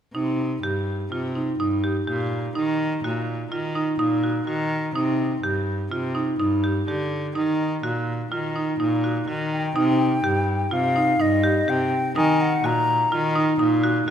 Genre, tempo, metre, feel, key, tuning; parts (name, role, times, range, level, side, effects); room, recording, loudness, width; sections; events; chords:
contemporary instrumental, chamber music in an uneven meter; 125 BPM; 5/4; straight; C minor; A4 = 440 Hz
marimba with hard mallets; arpeggios; 0.1-14.1 s; Eb4 to G4; -23 LUFS; right 2 dB
bright cello; bass; 0.1-14.1 s; G2 to Eb3; -25 LUFS; left 1 dB
hollow silver concert flute; melody; 9.5-13.4 s; Eb5 to Bb5; -24 LUFS; left 3 dB
light reverb; -20 LUFS; side -8 dB against mid
0.1-9.8 A section; 9.8-14.1 B section
0.1 Cm; 2.6 Ebm; 5.0 Cm; 7.4 Ebm; 9.8 Cm; 12.2 Ebm